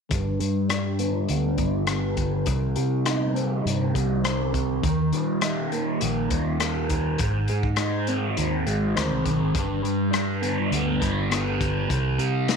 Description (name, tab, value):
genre	psychedelic rock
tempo	102 BPM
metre	4/4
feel	straight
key	unclear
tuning	A4 = 440 Hz
part	thick fuzz guitar	riff	0.1-12.6 s	G2 to Eb4	-24 LUFS	equal	distortion, phaser, low-pass filter
part	fingered electric bass	bass	0.1-12.6 s	G1 to Eb3	-28 LUFS	equal	none
part	crunchy breakbeat drum kit	drums	0.1-12.6 s	hi-hat, kick drum, rim click, snare drum	-29 LUFS	left 4 dB	none
room	light reverb, small room ambience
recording	1960s-style stereo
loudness	-22 LUFS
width	side -6 dB against mid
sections	0.1-12.6 A section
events	filter sweep on distorted electric guitar 0.1-12.6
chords	0.1 G; 2.5 Cm; 4.8 Eb; 7.2 Ab; 9.5 G; 11.9 Cm